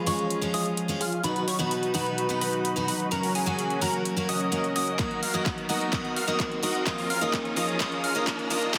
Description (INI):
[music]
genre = EDM, festival progressive house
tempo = 128 BPM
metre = 4/4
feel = straight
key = unclear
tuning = A4 = 440 Hz
[part]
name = picked steel-string acoustic guitar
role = accompaniment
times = 0.0-8.8 s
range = B2 to F#4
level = -32 LUFS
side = equal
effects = sidechain pumping, delay
[part]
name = rich chamber string section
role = sustained chords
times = 0.0-8.8 s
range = F3 to B4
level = -36 LUFS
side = equal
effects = sidechain pumping, low-pass filter
[part]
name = plucky unison lead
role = arpeggios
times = 0.0-8.8 s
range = Ab5 to F6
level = -34 LUFS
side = equal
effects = sidechain pumping, delay
[part]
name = dense compressed supersaw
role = riff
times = 0.0-8.8 s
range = Db4 to F5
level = -34 LUFS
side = equal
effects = sidechain pumping, low-pass filter, delay
[part]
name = riser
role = sound effects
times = 3.5-8.8 s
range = none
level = -41 LUFS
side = equal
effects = none
[part]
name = big-room dance drum kit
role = drums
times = 0.1-8.8 s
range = handclaps, hi-hat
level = -35 LUFS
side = equal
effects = overdrive, high-pass filter on snare, high-pass filter on hats
[part]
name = electronic kick drum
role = drums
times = 5.0-8.8 s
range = none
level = -34 LUFS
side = equal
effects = overdrive
[sound]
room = wet lush hall reverb, RT60 1.6 s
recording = dense, heavily limited modern master, high-pass filter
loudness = -27 LUFS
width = mono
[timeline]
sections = 0.0-8.8 A section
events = build-up 0.0-8.8; filter sweep on supersaw synth 0.0-8.8; filter sweep on string section 0.0-8.8; drum fill 5.0-8.8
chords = 0.0 Db; 1.2 B; 3.1 Gb; 5.0 Ebm; 6.9 Db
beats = 0.30 0.77 | 1.24 1.71 2.18 2.65 | 3.12 3.58 4.05 4.52 | 4.99 5.46 5.93 6.40 | 6.87 7.33 7.80 8.27 | 8.74